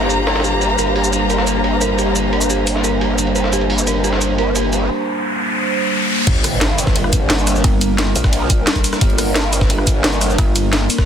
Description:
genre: dark technical drum and bass.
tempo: 175 BPM.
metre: 4/4.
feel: straight.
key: G minor.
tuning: A4 = 441 Hz.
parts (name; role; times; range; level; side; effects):
dark analog pad; sustained chords; 0.0-11.1 s; G3 to C5; -21 LUFS; equal; chorus, phaser, sidechain pumping.
dark detuned synth bell; arpeggios; 0.0-4.7 s; G4 to Bb4; -24 LUFS; right 3 dB; chorus, phaser, sidechain pumping, dub echo.
growl bass; bass; 0.0-10.4 s; G1 to Bb1; -20 LUFS; equal; chorus, tube saturation, sidechain pumping.
breakbeat sampler-style drum kit; drums; 0.0-11.1 s; hi-hat, ride cymbal, snare drum; -25 LUFS; right 2 dB; high-pass filter on cymbals, low-pass filter on cymbals, high-pass filter on hats, low-pass filter on hats, high-pass filter on snare, low-pass filter on snare, high-pass filter on room, low-pass filter on room.
dark studio string section; texture; 0.0-4.9 s; G4 to Bb5; -22 LUFS; left 2 dB; sidechain pumping.
drum and bass drum kit; drums; 0.1-11.1 s; crash cymbal, hi-hat, rim click, shaker, snare drum; -20 LUFS; equal; low-pass filter on cymbals, low-pass filter on perc, low-pass filter on hats, low-pass filter on snare, low-pass filter on room.
riser and impact; sound effects; 4.6-7.6 s; none; -22 LUFS; equal; none.
electronic kick drum; drums; 6.3-11.1 s; none; -16 LUFS; equal; none.
pulsing pluck wobble bass; bass; 7.6-8.1, 10.4-10.9 s; G1; -17 LUFS; equal; chorus.
room: light reverb.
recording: dense, heavily limited modern master.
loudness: -14 LUFS.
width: side -8 dB against mid.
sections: 0.0-6.3 A section; 6.3-11.1 B section.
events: filter sweep on synth bell 0.0-6.3; riser 4.6-6.3; drop 6.3-11.1; impact 6.3-7.6.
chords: 0.0 Gm.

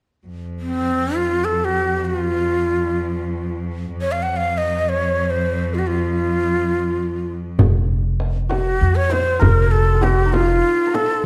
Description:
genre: Persian modal ensemble.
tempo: free time.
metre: none.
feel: none.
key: F dastgah homayun.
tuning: A4 = 437 Hz.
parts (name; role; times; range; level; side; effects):
bright cello; drone; 0.3-7.6 s; F2; -27 LUFS; equal; none.
breathy ney; melody; 0.6-11.2 s; C4 to Gb5+50c; -22 LUFS; equal; none.
upright bass; bass; 7.6-10.6 s; F1 to F2; -20 LUFS; equal; none.
frame drum; percussion; 7.6-11.1 s; none; -28 LUFS; equal; none.
tombak; percussion; 7.6-11.1 s; none; -24 LUFS; equal; none.
santur; second line; 8.5-11.3 s; Eb4 to C5; -28 LUFS; equal; none.
room: moderate recital hall reverb, RT60 1.4 s.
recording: dark, warm production.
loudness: -19 LUFS.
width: mono.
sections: 0.3-7.6 A section; 7.6-11.3 B section.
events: none.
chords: none.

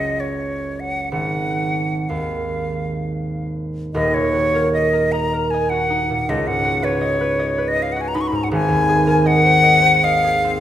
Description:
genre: classical, impressionist duo for flute and harp.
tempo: 60-82 BPM.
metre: 3/4.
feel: rubato.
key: Eb minor.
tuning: A4 = 440 Hz.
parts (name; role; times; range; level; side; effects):
bright silver concert flute; melody; 0.0-10.6 s; Db5 to Db6; -18 LUFS; left 2 dB; none.
concert harp; accompaniment; 0.0-10.6 s; Eb1 to Eb5; -20 LUFS; right 1 dB; none.
room: wet recital hall reverb, RT60 1.6 s.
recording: minimal, uncompressed stereo recording.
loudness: -16 LUFS.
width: side -11 dB against mid.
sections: 0.0-3.9 A section; 3.9-10.6 B section.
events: none.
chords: 0.0 Gb5; 1.1 Ab5; 3.9 Ebm; 6.3 Db9sus4; 8.5 Abadd9.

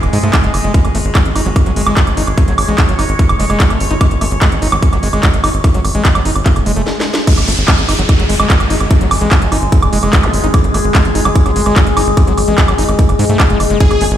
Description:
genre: psychedelic trance.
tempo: 147 BPM.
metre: 4/4.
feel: straight.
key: unclear.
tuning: A4 = 440 Hz.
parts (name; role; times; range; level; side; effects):
overtone-sweeping drone; sustained chords; 0.0-14.2 s; G#3 to C#5; -20 LUFS; left 2 dB; chorus, built-in reverb, sidechain pumping.
tight sequencer bass; bass; 0.0-14.2 s; F#1 to G#2; -15 LUFS; equal; none.
techno drum kit; drums; 0.0-14.2 s; crash cymbal, handclaps, hi-hat, snare drum, woodblock; -18 LUFS; right 2 dB; overdrive.
overdriven acid bass; riff; 0.1-14.0 s; F#3 to D#4; -20 LUFS; moving between left 4 dB and right 5 dB; distortion, auto-pan, sidechain pumping, tape echo.
electronic kick drum; drums; 0.3-13.9 s; none; -13 LUFS; equal; none.
swell, downlifter and zap; sound effects; 6.5-10.5 s; none; -21 LUFS; equal; none.
dense compressed supersaw; melody; 13.8-14.1 s; G#4; -15 LUFS; left 3 dB; phaser, sidechain pumping, digital delay.
room: little or no reverb.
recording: played on a big sound system in a bare room, stone room reverb.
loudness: -10 LUFS.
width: side -11 dB against mid.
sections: 0.0-7.3 A section; 7.3-14.2 B section.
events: swell 6.5-7.3; drum fill 6.9-7.3; stop 6.9-7.3; band accent 7.1; drop 7.3-14.2.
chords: 0.0 G#5.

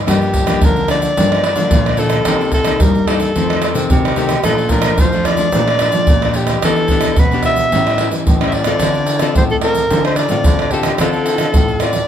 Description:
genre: samba and choro.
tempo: 110 BPM.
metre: 4/4.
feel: straight.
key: D minor.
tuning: A4 = 438 Hz.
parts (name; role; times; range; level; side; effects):
nylon-string guitar; accompaniment; 0.0-12.1 s; F2 to A4; -21 LUFS; left 6 dB; none.
breathy soprano saxophone; melody; 0.1-12.1 s; G4 to E5; -18 LUFS; equal; none.
nylon-string guitar; bass; 0.1-12.0 s; G2 to G3; -20 LUFS; equal; none.
egg shaker, surdo, pandeiro and tamborim; percussion; 0.1-12.1 s; none; -16 LUFS; right 1 dB; none.
room: light reverb.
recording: close, detailed microphones.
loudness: -12 LUFS.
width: side -9 dB against mid.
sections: 0.0-12.1 A section.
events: none.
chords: 0.1 Gm7; 2.3 Cm7; 3.4 F7; 4.5 Bbmaj7; 6.6 Em7; 7.7 A7; 8.8 Dm7.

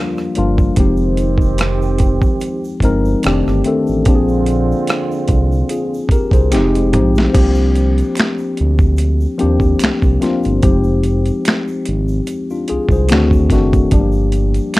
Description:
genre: R&B, neo-soul.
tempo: 73 BPM.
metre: 4/4.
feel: swing 53% on 16ths.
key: F dorian.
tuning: A4 = 441 Hz.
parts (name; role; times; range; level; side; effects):
tine electric piano; accompaniment; 0.0-14.8 s; Eb3 to C5; -17 LUFS; left 2 dB; plate reverb.
muted trombone section; stabs; 0.0-6.9 s; C3 to G4; -22 LUFS; right 5 dB; plate reverb.
dusty soul sampler-style drum kit; drums; 0.2-14.8 s; crash cymbal, finger snaps, hi-hat, kick drum, rim click, snare drum, toms; -16 LUFS; equal; overdrive.
egg shaker and finger snaps; percussion; 0.2-14.8 s; none; -34 LUFS; right 3 dB; none.
smooth gliding synth bass; bass; 0.4-14.6 s; F1 to Eb2; -16 LUFS; equal; none.
room: light reverb.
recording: dark, warm production.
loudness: -12 LUFS.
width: side -19 dB against mid.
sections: 0.0-7.3 A section; 7.3-14.8 B section.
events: drum fill 6.5-7.3.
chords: 0.0 Gm7; 0.8 Fm9; 3.2 F13; 4.1 Bb9; 6.5 Fm9; 7.3 C9sus4; 10.6 Fm7; 13.1 D7b9; 13.9 Gm7.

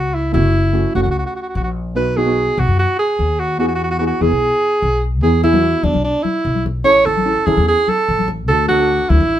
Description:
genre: calypso.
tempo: 147 BPM.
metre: 4/4.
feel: straight.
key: unclear.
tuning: A4 = 440 Hz.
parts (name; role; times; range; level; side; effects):
breathy alto saxophone; melody; 0.0-9.4 s; D4 to C#5; -16 LUFS; right 2 dB; none.
upright bass; bass; 0.0-9.4 s; F#1 to F#2; -18 LUFS; left 1 dB; none.
steel pan; accompaniment; 0.3-9.3 s; A3 to A4; -21 LUFS; right 1 dB; none.
congas; percussion; 5.4-9.3 s; none; -24 LUFS; left 5 dB; none.
room: moderate studio reverb, RT60 0.6 s.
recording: minimal, uncompressed stereo recording.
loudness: -14 LUFS.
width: side -11 dB against mid.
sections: 0.0-9.4 A section.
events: none.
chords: 0.3 F#m7; 2.0 B; 3.6 E; 6.9 A; 8.5 D.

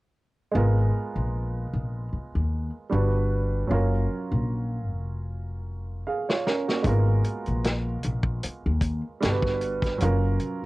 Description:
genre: R&B, neo-soul.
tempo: 76 BPM.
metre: 4/4.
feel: swing 55% on 16ths.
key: G# dorian.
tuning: A4 = 441 Hz.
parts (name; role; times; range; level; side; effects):
warm baby grand piano; accompaniment; 0.5-10.7 s; F#3 to E#5; -29 LUFS; right 3 dB; cassette tape, plate reverb.
upright bass; bass; 0.5-10.4 s; E#1 to D#2; -25 LUFS; left 1 dB; none.
warm soul drum kit; drums; 6.3-10.6 s; hi-hat, kick drum, snare drum; -27 LUFS; left 1 dB; none.
room: light reverb.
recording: home recording on cassette.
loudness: -24 LUFS.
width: side -19 dB against mid.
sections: 0.5-10.7 A section.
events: drum fill 5.3-6.8.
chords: 0.5 G#m69; 2.9 Gmaj7; 3.7 F#maj7; 6.8 G#m69; 9.2 Gmaj7; 10.0 F#maj7.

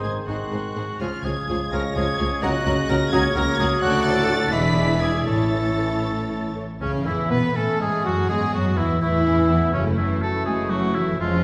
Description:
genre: classical.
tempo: 78-87 BPM (dotted quarters).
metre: 6/8.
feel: rubato.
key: A major from 3.8 s.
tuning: A4 = 440 Hz.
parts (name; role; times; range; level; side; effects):
dark symphonic violin section; melody; 0.0-11.4 s; C#4 to B6; -34 LUFS; equal; none.
clear clarinet; second line; 0.0-11.4 s; G#3 to F#5; -32 LUFS; equal; none.
clear oboe; second line; 0.0-11.4 s; C#4 to B4; -30 LUFS; equal; none.
clear studio violin section; second line; 0.0-11.4 s; C#4 to Gb5; -37 LUFS; equal; none.
silver concert flute; second line; 0.0-11.4 s; C#5 to D6; -38 LUFS; equal; none.
warm bassoon; accompaniment; 0.0-6.7 s; Eb3 to A3; -34 LUFS; equal; none.
warm studio viola section; accompaniment; 0.0-11.4 s; C#3 to Gb4; -31 LUFS; equal; none.
bright trombone section; sustained chords; 0.0-11.4 s; A2 to B3; -33 LUFS; equal; none.
mellow French horn section; sustained chords; 0.0-11.4 s; C#3 to Ab4; -32 LUFS; equal; none.
concert harp; arpeggios; 0.0-11.4 s; E#2 to C#6; -33 LUFS; equal; none.
warm symphonic cello section; bass; 0.0-11.4 s; Db2 to B3; -31 LUFS; equal; none.
warm symphonic double bass section; bass; 0.0-11.4 s; E1 to B2; -30 LUFS; equal; none.
room: wet recital hall reverb, RT60 1.6 s.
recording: heard from further back in the room.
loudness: -22 LUFS.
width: mono.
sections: 0.0-6.8 A section; 6.8-11.4 B section.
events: none.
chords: 0.0 Ab; 1.0 Db; 2.4 Gb/Db; 3.8 D; 4.5 E7; 5.3 A; 6.8 A/C#; 8.3 E; 9.0 A/E; 9.7 F#m7.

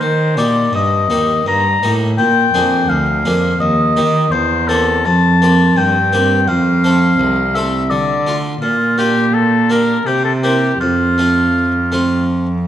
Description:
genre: classical, baroque-style sonata movement with continuo.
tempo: 84 BPM.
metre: 3/4.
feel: straight.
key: F major from 4.3 s.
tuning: A4 = 440 Hz.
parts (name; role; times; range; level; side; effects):
warm oboe; melody; 0.0-12.3 s; F4 to Bb5; -16 LUFS; left 4 dB; none.
harpsichord; accompaniment; 0.0-12.7 s; C2 to A4; -17 LUFS; right 1 dB; none.
rich cello; bass; 0.0-12.7 s; C2 to Eb3; -17 LUFS; right 1 dB; none.
room: wet recital hall reverb, RT60 1.4 s.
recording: none.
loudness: -12 LUFS.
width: side -10 dB against mid.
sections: 0.0-12.7 A section.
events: none.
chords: 0.0 Eb; 2.2 Bb7; 3.6 Eb; 4.3 C7/E; 6.5 F; 7.9 Dm; 8.6 Bb; 9.3 Gm/Bb; 10.1 C7; 10.8 F.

